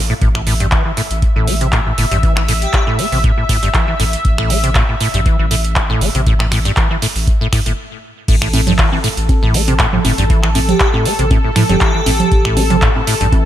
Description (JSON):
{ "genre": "acid house", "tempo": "119 BPM", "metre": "4/4", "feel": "swing 54% on 16ths", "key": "unclear", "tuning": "A4 = 440 Hz", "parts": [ { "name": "round analog bass", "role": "bass", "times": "0.0-13.4 s", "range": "G1 to A2", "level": "-18 LUFS", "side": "equal", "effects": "sidechain pumping" }, { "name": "deep acid bass", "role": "riff", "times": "0.1-13.4 s", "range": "G2 to A3", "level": "-18 LUFS", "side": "equal", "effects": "wide subtle chorus" }, { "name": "lush unison pad", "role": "sustained chords", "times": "0.2-13.5 s", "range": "A4 to E5", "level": "-22 LUFS", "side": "left 1 dB", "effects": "chorus, sidechain pumping" }, { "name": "electro analog drum machine", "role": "drums", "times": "0.2-13.4 s", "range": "congas, crash cymbal, finger snaps, handclaps, hi-hat", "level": "-18 LUFS", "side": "right 3 dB", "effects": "none" }, { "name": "electronic kick drum", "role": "drums", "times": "0.2-13.4 s", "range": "none", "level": "-15 LUFS", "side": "equal", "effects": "none" }, { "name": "airy dreamy lead", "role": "melody", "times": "2.6-2.8, 10.7-12.4 s", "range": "G4", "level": "-23 LUFS", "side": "left 2 dB", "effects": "chorus, cassette tape, digital delay" } ], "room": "little or no reverb", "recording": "none", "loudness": "-12 LUFS", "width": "side -12 dB against mid", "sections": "0.0-8.3 A section; 8.3-13.5 B section", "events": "stop 7.8-8.3; drop 8.3-13.5", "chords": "0.0 A5" }